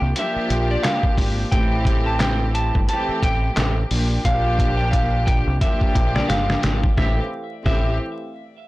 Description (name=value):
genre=hip hop, boom-bap hip-hop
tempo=88 BPM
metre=4/4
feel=swing 59% on 16ths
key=A phrygian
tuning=A4 = 441 Hz
part: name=clean electric guitar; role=melody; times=0.0-8.0 s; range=D5 to A5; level=-26 LUFS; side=equal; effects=high-pass filter, low-pass filter, ping-pong delay
part: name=warm studio string section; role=accompaniment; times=0.0-7.9 s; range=E3 to G4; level=-25 LUFS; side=equal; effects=cassette tape, high-pass filter, low-pass filter
part: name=deep dub fingered electric bass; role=bass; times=0.0-8.0 s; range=G1 to C2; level=-22 LUFS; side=equal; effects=tube saturation
part: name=trip hop sampler-style drum kit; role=drums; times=0.2-7.8 s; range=handclaps, hi-hat, kick drum, snare drum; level=-21 LUFS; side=equal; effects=none
room=little or no reverb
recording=blown-out, overdriven recording, vinyl crackle, overdrive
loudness=-18 LUFS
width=side -18 dB against mid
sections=0.0-7.0 A section; 7.0-8.7 B section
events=drum fill 4.2-7.0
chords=0.0 Bb6; 1.5 Am7; 3.9 Bb6; 7.0 Am7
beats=0.16 0.84 | 1.52 2.20 2.88 3.57 | 4.25 4.93 5.61 6.29 | 6.98 7.66